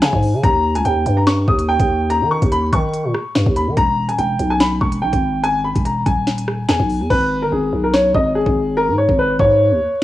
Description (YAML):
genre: hip hop, drill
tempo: 144 BPM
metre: 4/4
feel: half-time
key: G# harmonic minor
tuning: A4 = 440 Hz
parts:
  - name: warm upright piano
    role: melody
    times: 0.0-10.0 s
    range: G#4 to D#6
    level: -18 LUFS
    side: equal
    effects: cassette tape, tape echo
  - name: growling 808-style bass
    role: bass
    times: 0.0-9.8 s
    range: D#1 to D#3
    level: -19 LUFS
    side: equal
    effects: none
  - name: drill drum kit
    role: drums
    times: 0.0-9.5 s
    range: crash cymbal, hi-hat, kick drum, rim click, snare drum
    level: -19 LUFS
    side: equal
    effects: none
room: light reverb, digital ambience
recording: home recording on cassette, vinyl crackle, small room ambience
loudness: -14 LUFS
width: side -14 dB against mid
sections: 0.0-7.1 A section; 7.1-10.0 B section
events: hi-hats muted 7.1-10.0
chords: 0.4 D#; 3.8 Emaj7; 7.1 G#m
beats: 0.02 | 0.44 0.85 1.27 1.69 | 2.10 2.52 2.94 3.35 | 3.77 4.19 4.60 5.02 | 5.44 5.85 6.27 6.69 | 7.10 7.52 7.94 8.35 | 8.77 9.19 9.60 10.02